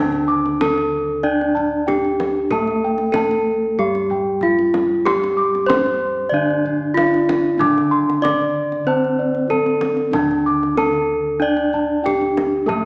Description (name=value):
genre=Javanese gamelan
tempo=94 BPM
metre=4/4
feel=straight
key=D slendro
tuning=A4 = 443 Hz
part: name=gamelan-type bronze metallophone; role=melody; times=0.0-12.9 s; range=D4 to D5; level=-21 LUFS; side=equal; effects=none
part: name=gamelan-type bronze metallophone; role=accompaniment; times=0.0-12.9 s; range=D3 to D4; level=-26 LUFS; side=equal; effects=none
part: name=gamelan-type bossed gongs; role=arpeggios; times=0.0-12.9 s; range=D5 to D6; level=-27 LUFS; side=equal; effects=none
part: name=gamelan-type bossed gongs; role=bass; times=0.0-12.9 s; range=D2 to A4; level=-29 LUFS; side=equal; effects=none
part: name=kendang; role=percussion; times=0.1-12.8 s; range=none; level=-29 LUFS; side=equal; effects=none
room=moderate scoring stage reverb, RT60 1.6 s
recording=small speaker sound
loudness=-18 LUFS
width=mono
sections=0.0-12.9 A section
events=none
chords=none